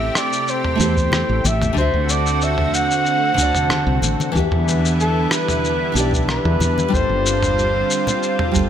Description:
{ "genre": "sunset chillout", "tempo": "93 BPM", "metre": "4/4", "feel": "straight", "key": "A minor", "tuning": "A4 = 438 Hz", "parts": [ { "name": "mellow flugelhorn", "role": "melody", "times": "0.0-8.7 s", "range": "A4 to F#5", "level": "-21 LUFS", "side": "equal", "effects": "digital delay" }, { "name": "nylon-string guitar", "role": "accompaniment", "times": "0.0-8.7 s", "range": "D3 to E5", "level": "-24 LUFS", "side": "moving between left 6 dB and right 7 dB", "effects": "auto-pan" }, { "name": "lush unison pad", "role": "sustained chords", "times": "0.0-8.7 s", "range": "C3 to G4", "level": "-24 LUFS", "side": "equal", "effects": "chorus" }, { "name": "woody fretless electric bass", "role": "bass", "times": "0.0-8.7 s", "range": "G1 to E2", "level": "-20 LUFS", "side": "equal", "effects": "none" }, { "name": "dusty soul sampler-style drum kit", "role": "drums", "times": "0.2-8.7 s", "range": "rim click, shaker, toms", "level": "-24 LUFS", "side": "equal", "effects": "none" }, { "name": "electronic kick drum", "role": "drums", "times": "1.0-8.7 s", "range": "none", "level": "-22 LUFS", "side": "equal", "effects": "none" }, { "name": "congas", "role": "percussion", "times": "1.1-8.2 s", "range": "none", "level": "-27 LUFS", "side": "left 3 dB", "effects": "none" } ], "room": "light reverb, digital ambience", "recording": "none", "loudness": "-16 LUFS", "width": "side -9 dB against mid", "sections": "0.0-8.7 A section", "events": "none", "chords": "0.0 Am7; 1.8 D7; 4.4 Em7; 6.9 G7sus4", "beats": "0.48 1.13 | 1.77 2.42 3.06 3.71 | 4.35 5.00 5.64 6.29 | 6.93 7.58 8.22" }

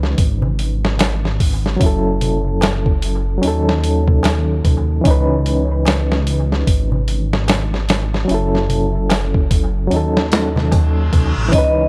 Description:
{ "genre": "trip hop", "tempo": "74 BPM", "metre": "4/4", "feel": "swing 60% on 16ths", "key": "C# minor", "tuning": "A4 = 440 Hz", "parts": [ { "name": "overdriven reed electric piano", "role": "accompaniment", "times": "0.0-11.9 s", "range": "E3 to B4", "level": "-23 LUFS", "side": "equal", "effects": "tremolo, tape echo" }, { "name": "dark detuned saw bass", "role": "bass", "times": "0.0-11.9 s", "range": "F#1 to D#2", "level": "-21 LUFS", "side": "equal", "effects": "none" }, { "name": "boom bap sampler-style drum kit", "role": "drums", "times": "0.0-11.8 s", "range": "hi-hat, kick drum, snare drum", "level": "-20 LUFS", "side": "equal", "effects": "none" }, { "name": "darbuka", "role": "percussion", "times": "0.4-11.3 s", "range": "none", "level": "-28 LUFS", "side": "equal", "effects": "none" }, { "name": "reverse cymbal", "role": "sound effects", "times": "10.5-11.5 s", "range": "none", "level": "-31 LUFS", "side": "equal", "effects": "none" }, { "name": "vibraphone with medium hard mallets", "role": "melody", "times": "11.5-11.9 s", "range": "D#5", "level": "-18 LUFS", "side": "equal", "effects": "none" }, { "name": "string machine, cellos", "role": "sustained chords", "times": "11.5-11.9 s", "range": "C#4", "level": "-34 LUFS", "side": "equal", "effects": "none" } ], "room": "little or no reverb", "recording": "echo-heavy mix", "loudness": "-17 LUFS", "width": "mono", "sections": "0.0-11.9 A section", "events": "reverse cymbal 10.5-11.5", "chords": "0.0 C#m9; 1.8 F#m7; 3.4 D#m7b5; 5.0 C#m9; 8.3 F#m7; 9.9 D#m7b5", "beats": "0.18 0.99 | 1.80 2.61 3.42 4.24 | 5.05 5.86 6.67 7.48 | 8.29 9.10 9.91 10.72 | 11.53" }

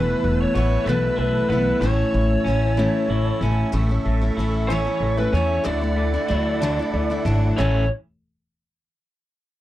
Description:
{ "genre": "folk rock and heartland rock", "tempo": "62 BPM (dotted quarters)", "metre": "6/8", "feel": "straight", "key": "A major", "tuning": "A4 = 440 Hz", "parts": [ { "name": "lead guitar through a small cranked amp", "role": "melody", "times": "0.0-7.9 s", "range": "B4 to D5", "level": "-24 LUFS", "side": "right 1 dB", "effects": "overdrive" }, { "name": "picked steel-string acoustic guitar", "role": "accompaniment", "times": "0.0-7.9 s", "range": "E2 to E4", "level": "-25 LUFS", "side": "left 3 dB", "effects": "none" }, { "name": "musette accordion", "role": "sustained chords", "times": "0.0-7.9 s", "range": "C#4 to E6", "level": "-34 LUFS", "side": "right 6 dB", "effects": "none" }, { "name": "electric guitar through a small old amp", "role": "riff", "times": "0.0-7.8 s", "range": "E2 to E4", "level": "-27 LUFS", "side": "right 2 dB", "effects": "none" }, { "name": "upright bass", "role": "bass", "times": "0.0-7.9 s", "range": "E1 to E2", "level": "-22 LUFS", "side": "equal", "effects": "none" } ], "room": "little or no reverb", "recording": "dry, close 1970s-style studio recording", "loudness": "-18 LUFS", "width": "side -14 dB against mid", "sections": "0.0-3.7 A section; 3.7-7.6 B section; 7.6-9.5 C section", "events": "none", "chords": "0.0 Esus4; 1.8 A; 5.7 Dadd9; 7.6 A", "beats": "0.86 | 1.82 2.78 | 3.74 4.70 | 5.66 6.62 | 7.58" }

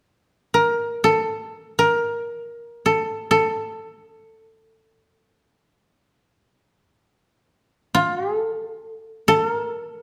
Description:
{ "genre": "japanese traditional, Japanese chamber music", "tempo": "free time", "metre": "none", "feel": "none", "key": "unclear", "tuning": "A4 = 444 Hz", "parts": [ { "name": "koto", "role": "solo", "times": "0.5-10.0 s", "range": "A4 to Bb4", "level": "-22 LUFS", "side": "equal", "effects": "none" } ], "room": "moderate recital hall reverb, RT60 1.4 s", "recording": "none", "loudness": "-22 LUFS", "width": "mono", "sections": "0.0-10.0 A section", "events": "none", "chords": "none", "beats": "free time" }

